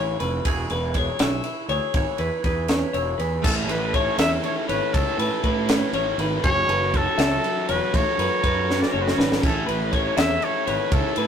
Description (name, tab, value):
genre	math rock and midwest emo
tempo	80 BPM (dotted quarters)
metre	6/8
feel	straight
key	A major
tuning	A4 = 437 Hz
part	twangy electric guitar	accompaniment	0.0-4.9 s	A2 to C#5	-34 LUFS	right 8 dB	phaser
part	clean electric guitar	arpeggios	0.0-11.3 s	G#4 to E5	-26 LUFS	left 5 dB	none
part	fuzz fingered electric bass	bass	0.0-11.3 s	E1 to A2	-28 LUFS	right 1 dB	overdrive
part	crisp fusion drum kit	drums	0.2-11.3 s	crash cymbal, kick drum, ride cymbal, snare drum	-24 LUFS	right 1 dB	none
part	clear trumpet	melody	3.4-11.3 s	A4 to E5	-26 LUFS	right 1 dB	none
part	biting overdriven guitar	riff	3.4-11.3 s	F#3 to A4	-28 LUFS	right 1 dB	none
room	light reverb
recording	rough rehearsal-room recording, tube saturation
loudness	-20 LUFS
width	side -8 dB against mid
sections	0.0-3.4 A section; 3.4-11.3 B section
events	drum fill 8.7-9.4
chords	0.5 E6; 3.4 Amaj9; 6.4 F#m9; 9.4 Amaj9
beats	| 0.46 1.20 | 1.95 2.70 | 3.45 4.19 | 4.94 5.69 | 6.44 7.18 | 7.93 8.68 | 9.43 10.17 | 10.92